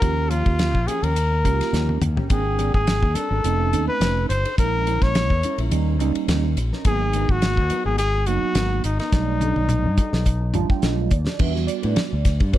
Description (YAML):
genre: electric jazz fusion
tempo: 106 BPM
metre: 4/4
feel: swing 54% on 16ths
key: unclear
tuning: A4 = 435 Hz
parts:
  - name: clear trumpet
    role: melody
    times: 0.0-10.8 s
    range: D#4 to C#5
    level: -24 LUFS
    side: left 2 dB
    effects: none
  - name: mellow tine electric piano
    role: accompaniment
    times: 0.0-12.6 s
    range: F#3 to A5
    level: -27 LUFS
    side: right 11 dB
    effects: analog chorus
  - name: mellow electric guitar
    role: stabs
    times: 0.0-12.6 s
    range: E#3 to C5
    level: -32 LUFS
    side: left 1 dB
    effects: analog chorus
  - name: fingered electric bass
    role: bass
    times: 0.0-12.6 s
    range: F1 to A2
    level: -22 LUFS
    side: equal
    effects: none
  - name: damped 70s drum kit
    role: drums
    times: 0.0-12.6 s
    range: crash cymbal, hi-hat, kick drum, ride cymbal, snare drum, toms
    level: -23 LUFS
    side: equal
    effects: none
room: light reverb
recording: dark, warm production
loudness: -18 LUFS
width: side -13 dB against mid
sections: 0.0-11.4 A section; 11.4-12.6 B section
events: drum fill 1.7-2.3, 9.1-11.4; tine electric piano fill 10.3-11.4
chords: 0.0 D#9; 2.3 G#maj9#11; 3.4 F7b13; 4.6 A#m7b5; 5.7 D#7; 6.9 G#m9; 9.1 B7alt; 11.4 Em9